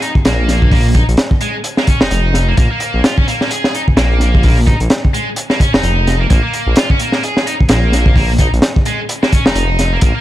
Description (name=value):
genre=breakbeat, breaks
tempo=129 BPM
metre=4/4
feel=swing 58% on 16ths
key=Bb minor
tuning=A4 = 440 Hz
part: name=heavy high-gain guitar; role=riff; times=0.0-10.2 s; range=Ab3 to Ab4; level=-18 LUFS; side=equal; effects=distortion, overdrive, tape echo
part: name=crunchy breakbeat drum kit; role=drums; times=0.0-10.1 s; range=hi-hat, kick drum, snare drum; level=-13 LUFS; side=equal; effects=none
part: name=detuned saw bass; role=bass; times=0.2-10.1 s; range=F1 to Bb1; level=-14 LUFS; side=equal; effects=none
room=small room ambience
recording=dark, warm production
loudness=-11 LUFS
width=side -14 dB against mid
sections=0.0-10.2 A section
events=none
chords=0.0 Bb5